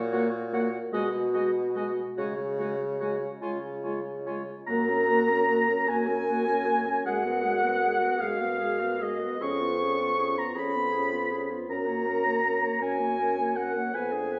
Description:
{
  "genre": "classical, slow romantic movement for wind quintet",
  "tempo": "47-54 BPM (dotted quarters)",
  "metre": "6/8",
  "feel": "rubato",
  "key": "F# major",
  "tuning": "A4 = 440 Hz",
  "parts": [
    { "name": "mellow bassoon", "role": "bass", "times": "0.0-14.4 s", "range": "E#2 to C#3", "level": "-32 LUFS", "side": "equal", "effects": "none" },
    { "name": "silver concert flute", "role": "melody", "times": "0.1-14.4 s", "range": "D#5 to C#6", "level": "-38 LUFS", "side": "equal", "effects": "none" },
    { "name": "warm oboe", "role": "second line", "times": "0.1-14.4 s", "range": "C#5 to C#6", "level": "-32 LUFS", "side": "equal", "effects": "none" },
    { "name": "mellow French horn", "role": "accompaniment", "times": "0.1-14.4 s", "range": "G#3 to D4", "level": "-36 LUFS", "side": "equal", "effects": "none" },
    { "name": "warm clarinet", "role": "accompaniment", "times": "0.1-14.4 s", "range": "E#4 to C#5", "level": "-38 LUFS", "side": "equal", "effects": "none" }
  ],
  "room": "wet recital hall reverb, RT60 1.4 s",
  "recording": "heard from further back in the room",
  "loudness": "-27 LUFS",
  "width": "mono",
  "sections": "0.0-4.7 A section; 4.7-14.4 B section",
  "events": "none",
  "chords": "0.0 F#/A#; 0.9 G#m7/B; 2.2 C#sus4; 3.4 C#; 4.7 F#; 7.0 G#m7/F#; 9.4 C#7/E#; 11.7 F#",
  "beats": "0.94 | 2.18 3.42 | 4.67 5.88 | 7.05 8.20 | 9.41 10.56 | 11.69 12.81 | 13.93"
}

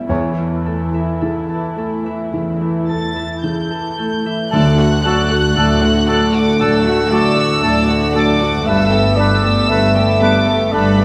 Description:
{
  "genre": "cinematic, emotional film score for orchestra",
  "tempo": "53-59 BPM",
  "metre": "4/4",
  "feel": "rubato",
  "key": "D major",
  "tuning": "A4 = 442 Hz",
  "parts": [
    { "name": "dark chamber viola section", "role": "accompaniment", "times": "0.0-11.0 s", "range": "C#3 to F#4", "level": "-26 LUFS", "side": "equal", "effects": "none" },
    { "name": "warm grand piano", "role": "accompaniment", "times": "0.0-11.0 s", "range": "D2 to D5", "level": "-23 LUFS", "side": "equal", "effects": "none" },
    { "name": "concert harp", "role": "arpeggios", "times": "0.0-11.0 s", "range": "E2 to A5", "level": "-28 LUFS", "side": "equal", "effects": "none" },
    { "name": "warm studio cello section", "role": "bass", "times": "0.1-11.0 s", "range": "D2 to G2", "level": "-22 LUFS", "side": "equal", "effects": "none" },
    { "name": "warm studio violin section", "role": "melody", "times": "2.9-11.0 s", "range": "B5 to A6", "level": "-24 LUFS", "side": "equal", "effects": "none" },
    { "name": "clear studio violin section", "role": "second line", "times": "4.5-11.0 s", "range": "F#4 to F#5", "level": "-28 LUFS", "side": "equal", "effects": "none" },
    { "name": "small flute group", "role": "second line", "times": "4.5-10.8 s", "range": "A5", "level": "-30 LUFS", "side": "equal", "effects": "none" },
    { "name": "warm oboe", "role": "second line", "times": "4.5-10.9 s", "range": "A4 to B4", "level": "-27 LUFS", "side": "equal", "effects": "none" },
    { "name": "mellow French horn section", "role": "sustained chords", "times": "4.5-11.0 s", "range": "A3 to D4", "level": "-24 LUFS", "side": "equal", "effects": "none" },
    { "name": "rich studio double bass section", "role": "bass", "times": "4.5-11.0 s", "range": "G1 to D2", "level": "-24 LUFS", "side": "equal", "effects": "none" },
    { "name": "timpani", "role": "percussion", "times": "4.5-6.0 s", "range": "D3", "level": "-24 LUFS", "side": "equal", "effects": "none" },
    { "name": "clear clarinet", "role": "second line", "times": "6.6-11.0 s", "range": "D5 to F#5", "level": "-23 LUFS", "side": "equal", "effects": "none" }
  ],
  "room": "wet stone room reverb, RT60 1.1 s",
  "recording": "none",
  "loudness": "-16 LUFS",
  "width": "mono",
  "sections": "0.0-4.5 A section; 4.5-11.0 A section",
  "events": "none",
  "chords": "0.1 A/E; 4.5 D; 8.7 Gadd9",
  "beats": "| 0.09 1.22 2.33 3.44 | 4.53 5.57 6.61 7.64 | 8.67 9.70 10.74"
}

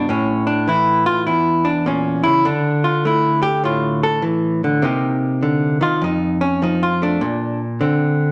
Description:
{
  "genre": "solo jazz",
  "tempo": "101 BPM",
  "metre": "4/4",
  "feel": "swing 66% on 8ths",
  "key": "unclear",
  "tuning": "A4 = 441 Hz",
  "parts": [
    { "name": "hollow-body jazz guitar", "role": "solo", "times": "0.0-8.3 s", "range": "E2 to A4", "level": "-18 LUFS", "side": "equal", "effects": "none" }
  ],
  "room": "wet large studio reverb, RT60 1.2 s",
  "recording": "none",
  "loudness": "-18 LUFS",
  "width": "mono",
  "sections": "0.0-8.3 A section",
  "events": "hollow-body jazz guitar solo 0.0-8.3",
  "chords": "0.1 A; 2.5 Dsus2; 4.8 Cm7; 6.0 F; 7.2 Bbadd9",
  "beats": "| 0.08 0.68 1.27 1.86 | 2.46 3.05 3.64 4.24 | 4.83 5.42 6.01 6.61 | 7.20 7.79"
}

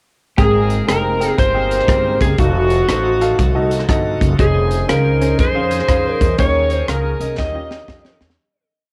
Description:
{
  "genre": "uptempo gospel",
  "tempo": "120 BPM",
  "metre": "4/4",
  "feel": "swing 65% on 8ths",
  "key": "Ab major",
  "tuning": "A4 = 440 Hz",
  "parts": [
    { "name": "clean lap steel guitar", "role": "melody", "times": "0.4-8.2 s", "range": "Gb4 to Eb5", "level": "-23 LUFS", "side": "equal", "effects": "cassette tape, tape echo" },
    { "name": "warm horn section", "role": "melody", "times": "0.4-8.3 s", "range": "A3 to Eb5", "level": "-23 LUFS", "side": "equal", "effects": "cassette tape" },
    { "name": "warm grand piano", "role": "accompaniment", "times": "0.4-8.2 s", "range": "Ab2 to G5", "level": "-25 LUFS", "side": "equal", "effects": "cassette tape" },
    { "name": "bright tonewheel organ", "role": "sustained chords", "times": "0.4-8.4 s", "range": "Db3 to C5", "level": "-31 LUFS", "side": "equal", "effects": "slow rotary speaker, overdrive, cassette tape" },
    { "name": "upright bass", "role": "bass", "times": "0.4-8.4 s", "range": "F1 to F2", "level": "-22 LUFS", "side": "equal", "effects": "none" },
    { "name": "crisp fusion drum kit", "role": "drums", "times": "0.4-8.4 s", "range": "hi-hat, kick drum, rim click, snare drum", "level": "-22 LUFS", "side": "equal", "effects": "cassette tape" }
  ],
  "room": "light reverb",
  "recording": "home recording on cassette",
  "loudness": "-16 LUFS",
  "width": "mono",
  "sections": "0.4-8.4 breakdown",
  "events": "fade-out 6.4-8.4; drum fill 7.4-8.4",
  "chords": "0.4 Abmaj9; 2.4 F7b9; 4.4 Bbm11/F; 6.4 Eb7sus4; 7.4 Eb9",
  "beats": "| 0.38 0.88 1.38 1.88 | 2.39 2.89 3.39 3.89 | 4.39 4.89 5.39 5.89 | 6.39 6.89 7.39 7.89"
}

